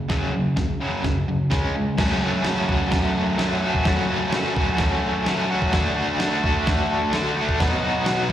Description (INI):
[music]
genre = garage rock duo or trio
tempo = 128 BPM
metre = 4/4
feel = straight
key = F# minor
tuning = A4 = 440 Hz
[part]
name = crunchy overdriven guitar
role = riff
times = 0.0-8.3 s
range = F#2 to F#4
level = -21 LUFS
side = equal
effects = tremolo, slapback echo
[part]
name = dusty soul sampler-style drum kit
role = drums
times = 0.1-8.3 s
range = crash cymbal, hi-hat, kick drum, snare drum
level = -25 LUFS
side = equal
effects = none
[sound]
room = light reverb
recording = live gig heard through the venue's PA, recital hall reverb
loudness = -19 LUFS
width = side -11 dB against mid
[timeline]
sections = 0.0-2.0 A section; 2.0-8.3 B section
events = none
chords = 0.0 F#5; 1.5 C#5; 2.0 F#m; 5.7 D; 7.6 B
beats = | 0.11 0.58 1.05 1.52 | 1.99 2.46 2.93 3.40 | 3.86 4.33 4.80 5.27 | 5.73 6.20 6.67 7.13 | 7.60 8.07